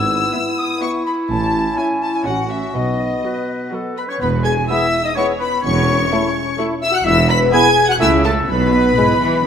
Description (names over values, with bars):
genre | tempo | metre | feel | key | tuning
cinematic, playful, whimsical film cue | 126 BPM | 3/4 | straight | E major | A4 = 442 Hz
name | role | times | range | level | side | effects
rich studio violin section | melody | 0.0-9.5 s | D#5 to B6 | -22 LUFS | left 3 dB | none
bright clarinet | second line | 0.0-9.2 s | E4 to B4 | -25 LUFS | equal | none
silver concert flute | second line | 0.0-9.5 s | A4 to E6 | -22 LUFS | left 1 dB | none
warm bassoon | accompaniment | 0.0-9.1 s | G#3 to C#4 | -26 LUFS | right 1 dB | none
dark tuba | bass | 0.0-8.9 s | E1 to C#2 | -24 LUFS | right 4 dB | none
rich studio cello section | bass | 0.0-9.5 s | E2 to E3 | -24 LUFS | right 3 dB | none
rich studio double bass section | bass | 0.0-8.9 s | E1 to C#2 | -24 LUFS | right 2 dB | none
warm studio violin section | second line | 0.4-9.5 s | F#4 to B5 | -26 LUFS | left 2 dB | none
rich studio viola section | accompaniment | 0.4-9.1 s | F#3 to F#4 | -28 LUFS | right 2 dB | none
mellow French horn section | sustained chords | 0.4-9.5 s | A3 to B4 | -22 LUFS | left 5 dB | none
warm oboe | second line | 4.0-9.5 s | A4 to B5 | -22 LUFS | right 2 dB | none
room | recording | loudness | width
wet scoring stage reverb, RT60 1.9 s | none | -14 LUFS | side -8 dB against mid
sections
0.0-4.2 A section; 4.2-9.5 B section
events
none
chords
0.0 E/G#; 1.3 A; 2.3 F#m/A; 2.7 B; 4.2 E; 5.6 A/E; 7.1 E5; 8.0 A/C#; 8.5 E/B